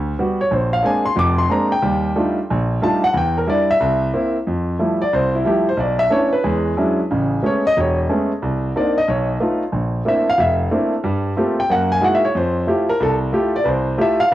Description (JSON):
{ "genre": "jazz", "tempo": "182 BPM", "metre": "4/4", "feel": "swing 63% on 8ths", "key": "unclear", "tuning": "A4 = 441 Hz", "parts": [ { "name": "warm grand piano", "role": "solo", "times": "0.0-14.3 s", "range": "E1 to D6", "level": "-16 LUFS", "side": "equal", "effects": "cassette tape" } ], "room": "moderate spring reverb, RT60 1.6 s, small room ambience", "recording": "home recording on cassette", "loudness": "-16 LUFS", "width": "side -14 dB against mid", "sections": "0.0-4.5 A section; 4.5-14.3 A section", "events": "grand piano solo 0.0-4.5, 4.5-14.3", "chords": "0.0 Gmaj7; 0.5 Bb9; 1.8 Ebmaj9#11; 3.1 Em7b5; 3.8 C7; 4.5 Fmaj9; 5.8 Bm11; 6.4 E13; 7.1 Amaj9; 8.4 Cm9; 9.1 B7#11; 9.7 Bbmaj9#11; 11.0 Gm11; 11.7 Gb13; 12.4 Fmaj9", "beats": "0.17 | 0.51 0.83 1.16 1.49 | 1.82 2.15 2.48 2.81 | 3.14 3.47 3.80 4.13 | 4.46 4.79 5.12 5.45 | 5.78 6.11 6.43 6.76 | 7.09 7.42 7.75 8.08 | 8.41 8.74 9.07 9.40 | 9.73 10.05 10.38 10.71 | 11.04 11.37 11.70 12.02 | 12.35 12.68 13.01 13.33 | 13.66 13.99 14.32" }